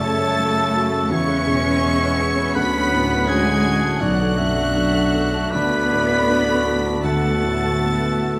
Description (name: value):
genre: cinematic, emotional film score for orchestra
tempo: 74-85 BPM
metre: 4/4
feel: rubato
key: unclear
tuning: A4 = 440 Hz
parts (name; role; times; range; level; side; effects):
- rich studio violin section; melody; 0.0-8.4 s; F#6 to C#7; -32 LUFS; equal; none
- clear clarinet; second line; 0.0-8.3 s; C#5 to F#5; -29 LUFS; equal; none
- clear oboe; second line; 0.0-8.4 s; F#4 to C#5; -27 LUFS; equal; none
- warm studio violin section; second line; 0.0-8.4 s; F#5 to C#6; -32 LUFS; equal; none
- felt-muted upright piano; accompaniment; 0.0-8.4 s; B1 to B4; -28 LUFS; equal; none
- warm studio viola section; accompaniment; 0.0-8.4 s; A3 to B4; -33 LUFS; equal; none
- mellow French horn section; sustained chords; 0.0-8.4 s; C#3 to F#4; -28 LUFS; equal; none
- concert harp; arpeggios; 0.0-8.4 s; F#2 to C#6; -33 LUFS; equal; none
- dark studio cello section; bass; 0.0-8.4 s; F#3 to C#4; -26 LUFS; equal; none
- rich studio double bass section; bass; 0.0-8.4 s; B1 to F#2; -30 LUFS; equal; none
room: wet scoring stage reverb, RT60 1.9 s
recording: none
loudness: -19 LUFS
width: mono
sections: 0.0-8.4 A section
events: none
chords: 0.0 F#m; 1.1 E6; 2.6 Dmaj7; 4.0 Bm7; 5.5 Dmaj7; 7.0 Bm7/D